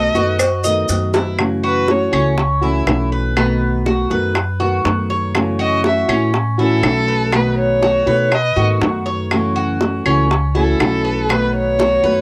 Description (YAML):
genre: latin, Cuban son and guajira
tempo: 121 BPM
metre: 4/4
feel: straight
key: unclear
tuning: A4 = 443 Hz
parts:
  - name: warm violin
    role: melody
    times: 0.0-2.1, 5.6-12.2 s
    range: A4 to E5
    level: -21 LUFS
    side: equal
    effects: cassette tape
  - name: nylon-string guitar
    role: accompaniment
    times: 0.0-12.2 s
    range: B2 to F#4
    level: -22 LUFS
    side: equal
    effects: cassette tape
  - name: Cuban tres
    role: arpeggios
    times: 0.0-12.2 s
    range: B3 to D#5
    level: -24 LUFS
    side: equal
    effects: cassette tape
  - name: upright bass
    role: bass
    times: 0.0-12.2 s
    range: B1 to B2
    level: -23 LUFS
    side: equal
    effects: none
  - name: maracas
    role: percussion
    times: 0.2-1.4 s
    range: none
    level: -29 LUFS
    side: equal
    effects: none
  - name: claves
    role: percussion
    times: 0.4-11.5 s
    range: none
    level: -25 LUFS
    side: equal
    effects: none
  - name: cowbell and bongos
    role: percussion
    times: 0.4-12.2 s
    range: none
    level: -22 LUFS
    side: equal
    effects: none
room: wet booth ambience, RT60 0.2 s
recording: home recording on cassette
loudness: -16 LUFS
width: mono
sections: 0.0-1.4 A section; 1.4-12.2 B section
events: drum fill 1.1; violin solo 1.4-12.2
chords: 0.0 B7; 1.4 F#m7; 3.4 B7; 5.3 F#m7; 7.3 B7; 9.3 F#m7; 11.3 B7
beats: 0.40 0.89 | 1.39 1.88 2.38 2.87 | 3.37 3.86 4.36 4.85 | 5.35 5.84 6.34 6.83 | 7.33 7.83 8.32 8.82 | 9.31 9.81 10.30 10.80 | 11.29 11.79